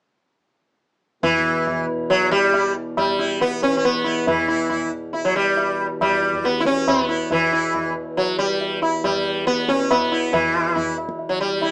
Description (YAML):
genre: indian classical, Hindustani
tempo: 138 BPM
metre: 7/4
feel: straight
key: E raga shivaranjani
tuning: A4 = 435 Hz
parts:
  - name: sitar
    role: melody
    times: 1.2-11.7 s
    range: E3 to E4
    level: -18 LUFS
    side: equal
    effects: none
  - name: pedal harmonium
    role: drone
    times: 1.2-11.7 s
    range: E2 to B2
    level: -29 LUFS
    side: equal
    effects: none
  - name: tabla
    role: percussion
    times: 1.2-11.7 s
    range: none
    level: -26 LUFS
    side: equal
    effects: none
room: moderate studio reverb, RT60 0.6 s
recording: small speaker sound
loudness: -18 LUFS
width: side -39 dB against mid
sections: 1.2-11.7 A section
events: none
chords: none